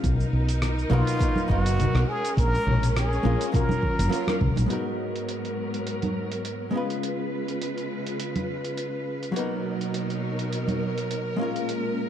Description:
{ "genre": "sunset chillout", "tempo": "103 BPM", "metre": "4/4", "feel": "swing 54% on 16ths", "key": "G# dorian", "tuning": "A4 = 440 Hz", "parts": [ { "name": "archtop guitar, miked and amplified", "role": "accompaniment", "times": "0.0-12.1 s", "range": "F#3 to C#5", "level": "-30 LUFS", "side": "moving between left 4 dB and right 5 dB", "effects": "auto-pan, tape echo" }, { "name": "clear symphonic string section", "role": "sustained chords", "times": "0.0-12.1 s", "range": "G#2 to B4", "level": "-30 LUFS", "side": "equal", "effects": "low-pass filter" }, { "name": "woody fretless electric bass", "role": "bass", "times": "0.0-4.7 s", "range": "F#1 to C#2", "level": "-23 LUFS", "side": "equal", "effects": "none" }, { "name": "dusty soul sampler-style drum kit", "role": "drums", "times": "0.0-11.8 s", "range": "congas, hi-hat, rim click, shaker", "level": "-31 LUFS", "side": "left 2 dB", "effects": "none" }, { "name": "electronic kick drum", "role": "drums", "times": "0.0-4.5 s", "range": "none", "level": "-26 LUFS", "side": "equal", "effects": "none" }, { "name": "trumpet with plunger mute", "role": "melody", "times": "0.9-4.4 s", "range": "E#4 to A#4", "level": "-30 LUFS", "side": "equal", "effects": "tape echo" }, { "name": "congas", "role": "percussion", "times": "1.4-10.8 s", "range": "none", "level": "-31 LUFS", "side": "right 2 dB", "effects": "none" } ], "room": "moderate lush hall reverb, RT60 2.2 s", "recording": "dark, warm production", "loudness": "-24 LUFS", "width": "side -10 dB against mid", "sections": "0.0-4.7 A section; 4.7-12.1 B section", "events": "none", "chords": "0.0 Bmaj7; 2.1 A#m7; 3.5 F#maj7; 4.7 G#m9; 6.7 C#7; 9.4 Bmaj7; 11.4 A#m7" }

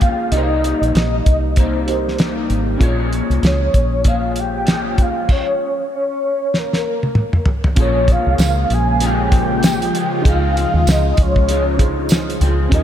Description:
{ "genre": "indie pop, bedroom pop", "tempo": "97 BPM", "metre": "4/4", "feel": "swing 60% on 16ths", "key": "Bb dorian", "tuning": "A4 = 440 Hz", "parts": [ { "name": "soft octave-layered synth lead", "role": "melody", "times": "0.0-12.8 s", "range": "Bb4 to Ab5", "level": "-20 LUFS", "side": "equal", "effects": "tremolo, ensemble chorus, analog delay" }, { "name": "dark upright piano", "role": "accompaniment", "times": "0.0-12.8 s", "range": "G3 to Db5", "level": "-28 LUFS", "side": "right 3 dB", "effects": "cassette tape" }, { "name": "electric guitar through a small old amp", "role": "accompaniment", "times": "0.0-12.8 s", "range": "Bb2 to F4", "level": "-23 LUFS", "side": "left 3 dB", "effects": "analog chorus, warbly pitch drift" }, { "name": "cloth-damped thuddy drum kit", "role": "drums", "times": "0.0-12.8 s", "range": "crash cymbal, hi-hat, kick drum, snare drum, toms", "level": "-16 LUFS", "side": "equal", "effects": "none" }, { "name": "deep dub fingered electric bass", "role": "bass", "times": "0.3-12.8 s", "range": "Ab1 to Eb2", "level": "-19 LUFS", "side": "equal", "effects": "none" }, { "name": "phased analog pad", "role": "sustained chords", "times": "7.8-12.8 s", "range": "Db3 to Bb4", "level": "-23 LUFS", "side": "right 1 dB", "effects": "phaser, chorus" }, { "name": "tambourine", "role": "percussion", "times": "8.4-12.3 s", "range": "none", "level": "-31 LUFS", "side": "right 6 dB", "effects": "none" } ], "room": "light reverb", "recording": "none", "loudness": "-14 LUFS", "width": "side -10 dB against mid", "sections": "0.0-7.8 A section; 7.8-12.8 B section", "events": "drum fill 6.5-7.8", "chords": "0.3 Cm7; 2.8 Bbm7; 5.3 N.C.; 7.8 Bbm7; 10.2 Dbmaj7" }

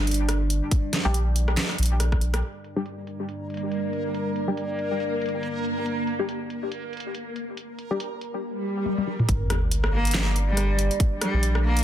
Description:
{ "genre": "deep dubstep", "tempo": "140 BPM", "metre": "4/4", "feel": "swing 57% on 16ths, half-time", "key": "G minor", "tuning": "A4 = 445 Hz", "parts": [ { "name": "dark analog pad", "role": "sustained chords", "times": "0.0-11.8 s", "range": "G3 to D5", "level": "-32 LUFS", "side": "right 1 dB", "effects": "chorus, phaser, vintage 12-bit sampler grit" }, { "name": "soft dub sub bass", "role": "bass", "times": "0.0-2.4, 9.3-11.8 s", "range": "G1 to Bb1", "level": "-23 LUFS", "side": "equal", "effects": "none" }, { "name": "dubstep drum kit", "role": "drums", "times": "0.1-11.8 s", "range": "handclaps, hi-hat, rim click, snare drum, toms", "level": "-28 LUFS", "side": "equal", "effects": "overdrive, low-pass filter on hats, low-pass filter on snare, low-pass filter on toms, low-pass filter on room" }, { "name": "electronic kick drum", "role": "drums", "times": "0.7-2.2, 9.3-11.1 s", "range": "none", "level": "-23 LUFS", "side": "equal", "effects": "none" }, { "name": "filtered dub chord stab", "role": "stabs", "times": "1.1-9.2 s", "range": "G3 to G4", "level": "-32 LUFS", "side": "left 3 dB", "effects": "chorus, dub echo" }, { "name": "backwards swelling texture", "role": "texture", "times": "3.6-8.4 s", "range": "Bb3 to Bb4", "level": "-31 LUFS", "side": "equal", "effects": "built-in reverb" }, { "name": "swell and sub drop", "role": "sound effects", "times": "8.5-11.0 s", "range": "none", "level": "-31 LUFS", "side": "equal", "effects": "none" }, { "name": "rich cello", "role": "melody", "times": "9.9-11.8 s", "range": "G3 to Bb3", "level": "-28 LUFS", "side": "equal", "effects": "dub echo" } ], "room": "light reverb", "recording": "dense, heavily limited modern master", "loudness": "-23 LUFS", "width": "side -11 dB against mid", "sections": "0.0-2.4 A section; 2.4-9.3 B section; 9.3-11.8 C section", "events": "drum fill 2.0-2.4, 8.9-9.3; swell 8.5-9.3; drop 9.3-11.8; impact 9.3-11.0", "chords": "0.0 G5" }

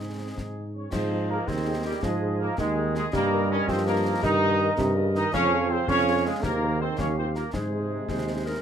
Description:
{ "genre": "military-style march for wind band", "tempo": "109 BPM (dotted quarters)", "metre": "6/8", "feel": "straight", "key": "Ab major", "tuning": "A4 = 440 Hz", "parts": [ { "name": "mellow trumpet section", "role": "melody", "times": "0.0-8.6 s", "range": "G4 to Eb5", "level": "-34 LUFS", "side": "left 3 dB", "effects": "none" }, { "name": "dark woodwind section", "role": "second line", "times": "0.0-8.6 s", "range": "G4 to F5", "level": "-34 LUFS", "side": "left 1 dB", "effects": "none" }, { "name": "warm euphonium", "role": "second line", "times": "0.0-8.6 s", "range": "C3 to C4", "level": "-32 LUFS", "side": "right 5 dB", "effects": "none" }, { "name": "mellow French horn section", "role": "accompaniment", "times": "0.0-8.5 s", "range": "Ab3 to Db5", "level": "-37 LUFS", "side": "left 6 dB", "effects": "none" }, { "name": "mellow tuba", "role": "bass", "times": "0.0-8.5 s", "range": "Eb2 to Ab2", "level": "-27 LUFS", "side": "right 1 dB", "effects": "none" }, { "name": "concert snare drum, concert bass drum and clash cymbals", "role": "drums", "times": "0.4-8.6 s", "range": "none", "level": "-35 LUFS", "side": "left 2 dB", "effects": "none" }, { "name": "warm trombone section", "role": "sustained chords", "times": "0.7-8.6 s", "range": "G3 to Eb4", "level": "-28 LUFS", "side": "right 1 dB", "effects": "none" } ], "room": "little or no reverb", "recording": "close, detailed microphones", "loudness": "-23 LUFS", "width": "side -8 dB against mid", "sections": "0.9-8.6 A section", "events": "none", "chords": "0.0 Ab; 3.1 Eb/G; 5.3 Db/F; 6.4 Ab/Eb; 7.0 Ebadd9; 7.5 Ab" }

